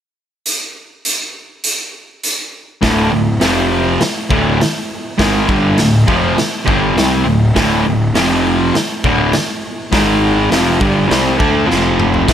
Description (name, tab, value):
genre	garage rock duo or trio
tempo	101 BPM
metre	4/4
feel	straight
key	D minor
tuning	A4 = 438 Hz
part	raw garage drum kit	drums	0.5-12.3 s	crash cymbal, hi-hat, kick drum, snare drum, toms	-18 LUFS	equal	none
part	fuzz guitar	riff	2.8-12.3 s	D2 to D4	-13 LUFS	equal	distortion
part	fuzz picked electric bass	bass	2.8-12.3 s	D1 to D2	-20 LUFS	equal	overdrive, tube saturation
room	light reverb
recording	none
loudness	-12 LUFS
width	side -9 dB against mid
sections	0.5-2.8 A section; 2.8-12.3 B section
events	drum fill 11.7-12.3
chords	0.5 N.C.; 2.8 D5; 3.4 F5; 4.0 Dm; 8.2 F5; 8.7 D5; 9.9 G#5; 10.5 Dm; 11.7 F5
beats	| 0.46 1.05 1.64 2.24 | 2.83 3.42 4.01 4.61 | 5.20 5.79 6.38 6.97 | 7.56 8.15 8.74 9.34 | 9.93 10.52 11.11 11.69 | 12.28